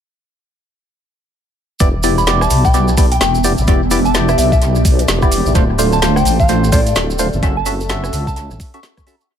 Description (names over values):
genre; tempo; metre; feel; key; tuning
UK garage, two-step garage; 128 BPM; 4/4; swing 60% on 16ths; E dorian; A4 = 441 Hz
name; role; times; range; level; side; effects
percussive organ stab; stabs; 1.8-9.2 s; A3 to E5; -18 LUFS; right 1 dB; chorus, phaser, dub echo
deep soft wobble bass; bass; 1.8-8.6 s; D1 to C#2; -17 LUFS; equal; chorus, sidechain pumping
electronic kick drum; drums; 1.8-9.1 s; none; -14 LUFS; equal; overdrive
garage drum kit; drums; 1.8-9.2 s; hi-hat, rim click, snare drum; -22 LUFS; equal; overdrive, dub echo
cabasa; percussion; 1.8-9.3 s; none; -26 LUFS; right 4 dB; none
ethereal airy pad; texture; 2.8-9.3 s; B3 to E5; -24 LUFS; right 1 dB; ensemble chorus, built-in reverb, phaser, sidechain pumping
soft synth bell; melody; 2.2-9.2 s; D5 to C#6; -20 LUFS; left 2 dB; chorus, phaser, dub echo
room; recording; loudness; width
light reverb, digital ambience; echo-heavy mix; -12 LUFS; side -9 dB against mid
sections
1.8-9.3 groove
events
fade-out 6.8-9.3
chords
1.8 Em7; 5.6 Dm7; 7.4 F#m7